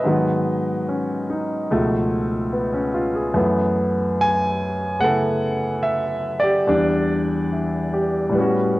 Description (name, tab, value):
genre	solo jazz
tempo	72 BPM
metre	4/4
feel	swing 69% on 8ths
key	unclear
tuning	A4 = 441 Hz
part	warm grand piano	solo	0.0-8.8 s	C#2 to G#5	-18 LUFS	equal	none
room	wet spring reverb, RT60 2.5 s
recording	home recording on cassette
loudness	-19 LUFS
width	side -18 dB against mid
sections	0.0-8.8 A section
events	none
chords	0.0 G#m7; 1.7 C#7b13; 3.4 F#m11; 6.7 Em7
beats	| 0.05 0.88 1.71 2.53 | 3.36 4.19 5.02 5.85 | 6.68 7.51 8.34